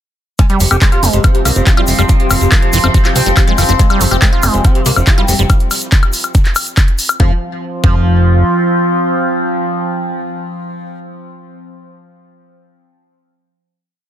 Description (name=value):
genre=psychedelic trance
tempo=141 BPM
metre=4/4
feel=straight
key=unclear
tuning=A4 = 440 Hz
part: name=oud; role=melody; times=0.4-11.0 s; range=C3 to C4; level=-20 LUFS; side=left 1 dB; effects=phaser, sidechain pumping, dub echo
part: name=overtone-sweeping drone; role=sustained chords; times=1.2-10.3 s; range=F3 to C4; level=-21 LUFS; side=equal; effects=chorus, built-in reverb, phaser, sidechain pumping
part: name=liquid acid bass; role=riff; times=0.4-8.0 s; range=E3 to G4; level=-20 LUFS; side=moving between left 2 dB and right 4 dB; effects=phaser, auto-pan, sidechain pumping, dub echo
part: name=drum and bass drum kit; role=drums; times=0.4-7.2 s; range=handclaps, hi-hat, woodblock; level=-16 LUFS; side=left 2 dB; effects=overdrive
part: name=electronic kick drum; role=drums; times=0.4-8.0 s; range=none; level=-10 LUFS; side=equal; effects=overdrive
part: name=egg shaker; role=percussion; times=0.4-7.2 s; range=none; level=-24 LUFS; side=left 2 dB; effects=none
part: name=warbly tape-like pad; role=texture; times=1.0-10.5 s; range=C4 to C6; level=-22 LUFS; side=right 1 dB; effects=chorus, built-in reverb, sidechain pumping
part: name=fat analog bass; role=bass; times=0.6-8.4 s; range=F1 to C2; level=-13 LUFS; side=equal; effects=none
part: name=formant-sweep wobble bass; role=second line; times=1.6-5.2 s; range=C4 to E4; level=-32 LUFS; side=right 5 dB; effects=none
room=digital ambience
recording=dense, heavily limited modern master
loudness=-10 LUFS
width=side -11 dB against mid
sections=0.4-7.2 drop; 7.2-10.6 final chord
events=drop 0.4-7.2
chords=0.4 F5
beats=| 0.39 0.82 1.24 1.67 | 2.09 2.52 2.94 3.37 | 3.79 4.22 4.64 5.07 | 5.50 5.92 6.35 6.77 | 7.20 7.62 8.05 8.47 | 8.90 9.33 9.75 10.18